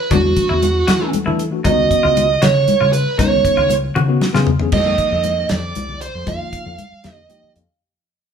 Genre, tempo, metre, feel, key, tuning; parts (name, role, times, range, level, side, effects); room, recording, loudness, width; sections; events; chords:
electric jazz fusion; 78 BPM (dotted quarters); 6/8; straight; A4 = 438 Hz
bluesy overdriven lead guitar; melody; 0.0-7.5 s; F#4 to F5; -17 LUFS; right 6 dB; distortion
tine electric piano; accompaniment; 0.1-7.8 s; Eb3 to G5; -22 LUFS; left 6 dB; fast stereo tremolo
clean electric guitar; stabs; 0.1-4.5 s; D4 to F#4; -25 LUFS; left 3 dB
fingered electric bass; bass; 0.1-7.7 s; C2 to E3; -21 LUFS; left 1 dB
damped 70s drum kit; drums; 0.1-7.7 s; crash cymbal, hi-hat, kick drum, snare drum, toms; -21 LUFS; equal
congas; percussion; 0.1-7.6 s; -24 LUFS; left 4 dB
moderate large studio reverb, RT60 1.2 s; band playing live in one room; -13 LUFS; side -7 dB against mid
0.0-4.7 A section; 4.7-7.8 B section
drum fill 4.0-4.7; fade-out 4.7-7.8; tine electric piano fill 7.0-7.8
0.0 E9sus4; 1.6 Db9sus4; 4.7 F9sus4